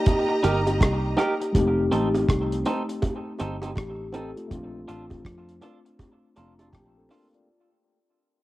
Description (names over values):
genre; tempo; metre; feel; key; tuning
lovers rock reggae; 81 BPM; 4/4; swing 62% on 16ths; Bb major; A4 = 439 Hz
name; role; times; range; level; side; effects
clear symphonic string section; second line; 0.0-1.5 s; G4 to Bb5; -29 LUFS; right 2 dB; none
mellow tine electric piano; accompaniment; 0.0-7.7 s; Ab3 to Bb5; -28 LUFS; left 2 dB; medium stereo tremolo, analog delay
deep reggae drum kit; drums; 0.1-7.5 s; hi-hat, kick drum, rim click; -24 LUFS; equal; cassette tape
bongos; percussion; 0.1-7.3 s; none; -32 LUFS; right 2 dB; none
twangy electric guitar; stabs; 0.3-7.4 s; C4 to Bb4; -30 LUFS; right 2 dB; analog delay
fingered electric bass; bass; 0.4-7.1 s; F1 to F2; -29 LUFS; equal; none
room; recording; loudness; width
light reverb, small room ambience; home recording on cassette; -22 LUFS; side -17 dB against mid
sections
0.0-7.5 A section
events
fade-out 0.0-7.5; tine electric piano fill 6.0-7.5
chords
0.0 Cm7; 1.5 F7; 4.5 Bbmaj7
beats
0.06 0.80 | 1.54 2.29 3.03 3.77 | 4.51 5.25 5.99 6.73